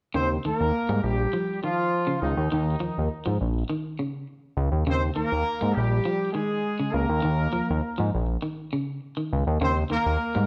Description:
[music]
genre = afrobeat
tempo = 102 BPM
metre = 4/4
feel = straight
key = Eb mixolydian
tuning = A4 = 440 Hz
[part]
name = mellow horn section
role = melody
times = 0.1-10.5 s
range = Eb3 to C5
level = -29 LUFS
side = equal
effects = none
[part]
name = electric guitar at the edge of break-up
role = arpeggios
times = 0.1-10.5 s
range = Db3 to Bb3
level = -34 LUFS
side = equal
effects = none
[part]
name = fat analog bass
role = bass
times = 0.1-10.5 s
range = Bb1 to Ab2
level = -27 LUFS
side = equal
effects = none
[sound]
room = moderate large studio reverb, RT60 1.2 s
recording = none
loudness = -26 LUFS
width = mono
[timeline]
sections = 0.2-10.5 A section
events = none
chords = 0.2 Eb7sus2

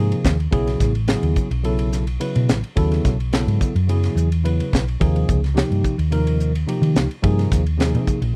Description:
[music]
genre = electric jazz fusion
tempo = 107 BPM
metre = 4/4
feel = straight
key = unclear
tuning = A4 = 438 Hz
[part]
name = tine electric piano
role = accompaniment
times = 0.0-8.4 s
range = C3 to B4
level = -26 LUFS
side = equal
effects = subtle chorus
[part]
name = hollow-body short-scale fingered electric bass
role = bass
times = 0.0-8.4 s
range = A1 to Eb3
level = -22 LUFS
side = equal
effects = none
[part]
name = crisp fusion drum kit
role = drums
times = 0.1-8.3 s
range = hi-hat, kick drum, ride cymbal, snare drum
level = -25 LUFS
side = equal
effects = none
[sound]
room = light reverb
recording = dry, close 1970s-style studio recording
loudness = -20 LUFS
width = mono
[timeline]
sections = 0.0-8.4 A section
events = none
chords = 0.0 Ebsus4; 0.5 B9sus4; 5.0 Eb9sus4

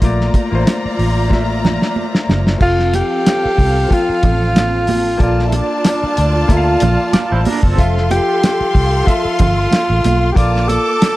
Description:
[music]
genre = lush 1970s-style soul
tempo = 93 BPM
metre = 4/4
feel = swing 54% on 16ths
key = F major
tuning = A4 = 441 Hz
[part]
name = warm studio string section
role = second line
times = 0.0-11.2 s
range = Bb3 to D6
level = -22 LUFS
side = equal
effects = none
[part]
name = warm concert grand piano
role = accompaniment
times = 0.0-11.2 s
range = F3 to G5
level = -22 LUFS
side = left 4 dB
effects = none
[part]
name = vintage muted fingered electric bass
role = bass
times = 0.0-10.8 s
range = F1 to D2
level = -17 LUFS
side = equal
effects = none
[part]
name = cloth-damped thuddy drum kit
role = drums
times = 0.0-11.2 s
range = crash cymbal, hi-hat, kick drum, snare drum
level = -16 LUFS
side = equal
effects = none
[part]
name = congas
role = percussion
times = 0.3-11.2 s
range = none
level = -22 LUFS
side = right 5 dB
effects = none
[part]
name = breathy tenor saxophone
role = melody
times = 2.6-11.2 s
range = D4 to A4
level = -17 LUFS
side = equal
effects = none
[part]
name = electric guitar through a small old amp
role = riff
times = 7.1-7.9 s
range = C4 to D5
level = -22 LUFS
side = right 4 dB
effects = tremolo
[sound]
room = studio ambience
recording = dark, warm production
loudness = -12 LUFS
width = side -17 dB against mid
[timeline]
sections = 0.0-2.6 A section; 2.6-11.2 B section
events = drum fill 1.3-2.6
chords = 0.0 Bbmaj7; 2.6 F; 5.2 Bbmaj7; 7.8 Fmaj7; 10.4 Bbmaj7

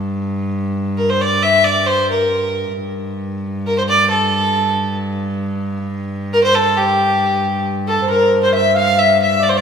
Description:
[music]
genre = medieval dance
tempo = 90 BPM (dotted quarters)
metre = 6/8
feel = straight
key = G dorian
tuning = A4 = 440 Hz
[part]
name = rich viola da gamba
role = drone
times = 0.0-9.6 s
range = G2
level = -21 LUFS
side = equal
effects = none
[part]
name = bright fiddle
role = melody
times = 1.0-9.6 s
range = G4 to F5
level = -14 LUFS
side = left 1 dB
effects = none
[part]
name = Celtic harp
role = second line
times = 7.9-9.6 s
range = A4 to F5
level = -19 LUFS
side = right 4 dB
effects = none
[part]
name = bright alto recorder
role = second line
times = 7.9-9.6 s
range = A4 to F5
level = -22 LUFS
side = left 6 dB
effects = none
[sound]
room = wet concert hall reverb, RT60 2.2 s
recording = minimal, uncompressed stereo recording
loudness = -14 LUFS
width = side -7 dB against mid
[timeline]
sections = 0.0-8.1 A section; 8.1-9.6 B section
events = none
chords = none

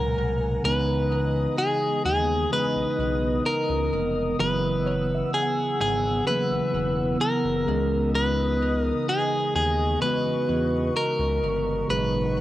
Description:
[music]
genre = contemporary R&B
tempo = 64 BPM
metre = 4/4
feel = straight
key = C# dorian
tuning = A4 = 440 Hz
[part]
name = clean electric guitar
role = melody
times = 0.0-12.4 s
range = G#4 to B4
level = -25 LUFS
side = equal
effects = tape echo
[part]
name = mellow tine electric piano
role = accompaniment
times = 0.0-12.4 s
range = A#2 to F#4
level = -28 LUFS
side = right 1 dB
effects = phaser, cassette tape
[part]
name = glassy FM pad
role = sustained chords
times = 0.0-12.4 s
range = B3 to E6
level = -31 LUFS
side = left 1 dB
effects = ensemble chorus, built-in reverb, cassette tape
[part]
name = smooth gliding synth bass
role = bass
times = 0.0-12.4 s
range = E1 to E2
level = -29 LUFS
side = equal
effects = none
[part]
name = soft round pluck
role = texture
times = 0.0-7.1 s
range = C#5 to D#6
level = -39 LUFS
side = left 2 dB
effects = none
[sound]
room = light reverb, digital ambience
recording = home recording on cassette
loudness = -22 LUFS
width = side -14 dB against mid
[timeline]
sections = 0.0-12.4 A section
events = none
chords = 0.0 G#m9; 0.6 C#m9; 4.4 F#7sus4; 7.7 C#m9; 11.9 G#9sus4

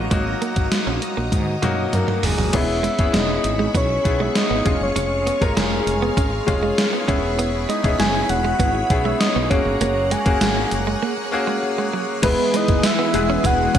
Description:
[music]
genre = 1980s-style pop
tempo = 99 BPM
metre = 4/4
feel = straight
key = unclear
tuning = A4 = 440 Hz
[part]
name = bright grand piano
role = accompaniment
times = 0.0-13.8 s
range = F#3 to B4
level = -24 LUFS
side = left 3 dB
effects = none
[part]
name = string machine, violins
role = sustained chords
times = 0.0-13.8 s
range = E3 to D#6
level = -27 LUFS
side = equal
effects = ensemble chorus
[part]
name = direct-recorded clean electric guitar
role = riff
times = 0.0-13.8 s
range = F#3 to C#4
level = -28 LUFS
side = right 7 dB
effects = wide subtle chorus, digital delay
[part]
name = woody fretless electric bass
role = bass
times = 0.0-13.8 s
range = E1 to G#2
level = -25 LUFS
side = equal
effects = none
[part]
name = gated 80s digital drum machine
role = drums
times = 0.1-13.8 s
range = crash cymbal, hi-hat, kick drum, snare drum, tambourine, toms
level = -22 LUFS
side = equal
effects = gated reverb, gated reverb snare
[part]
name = soft octave-layered synth lead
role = melody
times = 1.9-13.8 s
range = G#4 to G#5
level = -23 LUFS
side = left 1 dB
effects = chorus
[part]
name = mellow synth brass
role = stabs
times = 12.2-13.8 s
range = E4 to B4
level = -28 LUFS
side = right 2 dB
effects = chorus
[sound]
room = moderate lush hall reverb, RT60 2.2 s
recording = bright 1980s-style digital production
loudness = -17 LUFS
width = side -9 dB against mid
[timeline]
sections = 0.0-2.5 A section; 2.5-12.2 B section; 12.2-13.8 C section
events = drum fill 1.3-2.5; break 11.0-12.2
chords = 0.0 D#m/G#; 2.5 E6; 4.7 C#/E#; 7.1 E6; 9.5 F#add9; 12.2 E

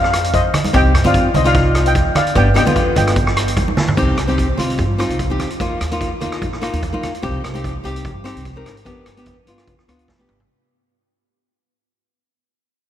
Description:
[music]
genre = calypso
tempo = 147 BPM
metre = 4/4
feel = swing 54% on 16ths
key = C minor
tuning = A4 = 440 Hz
[part]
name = steel pan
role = melody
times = 0.0-3.7 s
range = C5 to G5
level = -19 LUFS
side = left 1 dB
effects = none
[part]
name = upright bass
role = bass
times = 0.0-10.5 s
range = G1 to G2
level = -19 LUFS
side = equal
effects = none
[part]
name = street-band drum kit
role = drums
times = 0.0-10.5 s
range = hi-hat, kick drum, rim click, snare drum, toms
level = -21 LUFS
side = equal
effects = none
[part]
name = congas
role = percussion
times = 0.5-7.1 s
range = none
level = -24 LUFS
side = right 3 dB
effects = none
[part]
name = nylon-string guitar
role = accompaniment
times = 0.7-10.4 s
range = D3 to Bb4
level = -21 LUFS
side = left 2 dB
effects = none
[sound]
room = moderate huge ambient reverb, RT60 3.9 s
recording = dreamy mix soaked in reverb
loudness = -14 LUFS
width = side -11 dB against mid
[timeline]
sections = 0.0-4.0 A section; 4.0-10.5 B section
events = drum fill 3.6-4.0, 10.1-10.5; fade-out 4.0-10.5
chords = 0.0 F7(no3); 0.7 Cmadd9; 2.4 G; 4.0 Cm; 5.6 Ebsus2; 7.2 Cm; 8.9 G

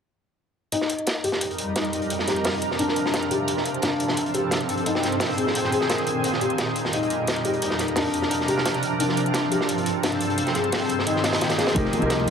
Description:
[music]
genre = liquid drum and bass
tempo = 174 BPM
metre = 4/4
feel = straight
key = F dorian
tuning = A4 = 440 Hz
[part]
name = shimmering ambient pad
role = sustained chords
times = 1.3-12.3 s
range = F2 to Bb4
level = -25 LUFS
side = right 1 dB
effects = chorus, built-in reverb, sidechain pumping
[part]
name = felt-muted upright piano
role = arpeggios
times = 0.7-12.3 s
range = D4 to Eb5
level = -26 LUFS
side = left 3 dB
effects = low-pass filter, tape echo
[part]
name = crunchy breakbeat drum kit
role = drums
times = 0.7-12.3 s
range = hi-hat, snare drum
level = -27 LUFS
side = right 1 dB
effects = high-pass filter on hats, high-pass filter on snare, high-pass filter on room
[part]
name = electronic hi-hat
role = drums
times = 0.7-12.3 s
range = none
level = -32 LUFS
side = right 1 dB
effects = none
[part]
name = felt-muted upright piano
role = accompaniment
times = 11.7-12.3 s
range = F3 to Bb4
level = -24 LUFS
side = equal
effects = digital delay
[part]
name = upright bass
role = bass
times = 11.8-12.3 s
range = F1 to C2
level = -26 LUFS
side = equal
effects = none
[part]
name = electronic kick drum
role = drums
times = 11.8 s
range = none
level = -29 LUFS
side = right 1 dB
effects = none
[part]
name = congas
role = percussion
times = 11.9-12.3 s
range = none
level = -31 LUFS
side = left 3 dB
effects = none
[sound]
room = moderate huge ambient reverb, RT60 3.8 s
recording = none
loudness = -21 LUFS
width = side -7 dB against mid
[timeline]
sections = 0.7-12.3 A section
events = filter sweep on ambient pad 0.7-12.3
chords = 0.7 F9sus4; 2.1 C9sus4; 3.5 G9sus4; 4.9 Bb9sus4; 6.2 F9sus4; 7.6 C9sus4; 9.0 G9sus4; 10.4 Bb9sus4; 11.8 F9sus4

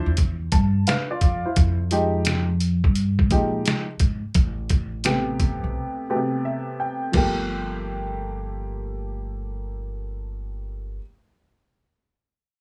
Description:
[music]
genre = hip hop, jazz-hop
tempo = 86 BPM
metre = 4/4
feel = swing 66% on 16ths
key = G minor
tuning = A4 = 442 Hz
[part]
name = warm upright piano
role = accompaniment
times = 0.0-11.0 s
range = B2 to A5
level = -29 LUFS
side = equal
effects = plate reverb
[part]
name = upright bass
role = bass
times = 0.1-11.0 s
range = G1 to Bb2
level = -28 LUFS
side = equal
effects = none
[part]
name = trip hop sampler-style drum kit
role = drums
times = 0.2-7.4 s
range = crash cymbal, hi-hat, kick drum, snare drum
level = -24 LUFS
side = equal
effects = none
[sound]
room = light reverb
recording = none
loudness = -23 LUFS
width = mono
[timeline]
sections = 0.0-7.1 A section; 7.1-9.9 B section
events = upright piano fill 0.2-1.6, 6.1-7.1; break 5.8-7.1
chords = 0.0 Dm9; 1.6 Fm9; 4.4 Am9; 7.1 Gm9

